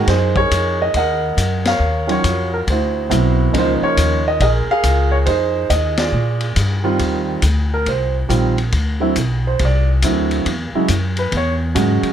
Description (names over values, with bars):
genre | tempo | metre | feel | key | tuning
jazz piano trio | 139 BPM | 4/4 | swing 65% on 8ths | unclear | A4 = 440 Hz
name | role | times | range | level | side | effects
warm concert grand piano | melody | 0.0-12.1 s | Db3 to Gb5 | -18 LUFS | right 2 dB | none
upright bass | bass | 0.0-12.1 s | Bb1 to Bb2 | -18 LUFS | left 1 dB | none
vintage drum kit | drums | 0.1-12.1 s | hi-hat, kick drum, ride cymbal, snare drum | -24 LUFS | left 3 dB | none
room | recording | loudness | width
little or no reverb | close, detailed microphones | -15 LUFS | side -9 dB against mid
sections
0.0-7.0 A section; 7.0-12.1 B section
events
band accent 1.6, 5.9; grand piano solo 7.0-12.1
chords
0.1 Gb69; 1.8 Ebm9; 2.7 D13; 3.5 Db69; 5.3 Fm7; 6.1 Bb13; 7.0 Eb69; 8.7 D9; 10.5 E69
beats
| 0.08 0.51 0.95 1.38 | 1.81 2.24 2.68 3.11 | 3.54 3.97 4.41 4.84 | 5.27 5.70 6.13 6.57 | 7.00 7.43 7.86 8.29 | 8.73 9.16 9.59 10.02 | 10.45 10.88 11.32 11.75